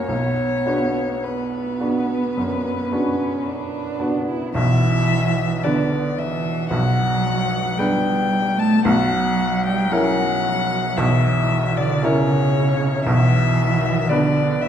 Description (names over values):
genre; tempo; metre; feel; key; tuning
classical, slow romantic movement for piano trio; 56 BPM; 4/4; uneven beats, rubato; B minor; A4 = 439 Hz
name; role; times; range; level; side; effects
rich violin; melody; 0.0-14.7 s; B4 to A5; -24 LUFS; left 5 dB; none
warm cello; second line; 0.0-14.7 s; C#3 to E4; -22 LUFS; right 3 dB; none
bright baby grand piano; accompaniment; 0.0-14.7 s; B1 to B4; -21 LUFS; equal; none
room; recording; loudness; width
wet recital hall reverb, RT60 1.4 s; heard from further back in the room; -17 LUFS; side -9 dB against mid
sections
0.0-4.6 A section; 4.6-14.7 B section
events
none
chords
0.1 Bm; 8.9 F#7/B; 13.1 Bm